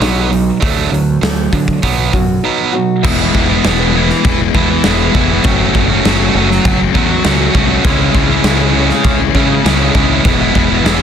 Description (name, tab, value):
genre	quiet-loud alternative rock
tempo	100 BPM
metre	4/4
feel	straight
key	E major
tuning	A4 = 440 Hz
part	fingerpicked old ladder-braced acoustic guitar	arpeggios	0.0-3.0 s	B2 to F#4	-22 LUFS	left 7 dB	none
part	distorted electric guitar	riff	0.0-11.0 s	B2 to F#4	-15 LUFS	right 10 dB	overdrive
part	growling picked electric bass	bass	0.0-11.0 s	E1 to D3	-17 LUFS	equal	overdrive
part	big rock drum kit	drums	0.0-11.0 s	crash cymbal, hi-hat, kick drum, snare drum	-16 LUFS	equal	none
part	fuzz guitar	riff	3.0-11.0 s	C#3 to F#4	-15 LUFS	left 12 dB	distortion
part	string machine, cellos	sustained chords	7.8-11.0 s	G#4 to B5	-26 LUFS	equal	none
room	little or no reverb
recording	dense, heavily limited modern master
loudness	-10 LUFS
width	side -8 dB against mid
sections	0.0-3.0 A section; 3.0-11.0 B section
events	none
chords	0.0 B; 0.6 D; 1.8 B; 3.0 E; 5.4 F#m; 7.9 C#m7; 10.3 E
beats	0.01 | 0.62 1.23 1.83 2.43 | 3.04 3.64 4.24 4.85 | 5.45 6.05 6.65 7.25 | 7.86 8.46 9.06 9.66 | 10.26 10.86